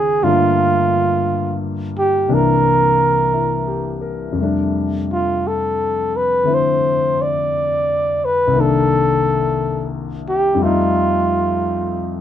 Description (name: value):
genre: jazz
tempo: 58 BPM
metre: 4/4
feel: swing 67% on 8ths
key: C major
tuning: A4 = 440 Hz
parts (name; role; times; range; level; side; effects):
- mellow flugelhorn; melody; 0.0-12.2 s; F4 to D5; -16 LUFS; right 1 dB; none
- warm grand piano; accompaniment; 0.0-12.2 s; C2 to Bb4; -19 LUFS; left 4 dB; none
room: moderate studio reverb, RT60 0.5 s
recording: none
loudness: -15 LUFS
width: side -10 dB against mid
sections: 0.0-12.2 A section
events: none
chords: 0.2 Gm7; 2.3 C7; 4.4 F6; 8.5 Cm7; 10.6 F7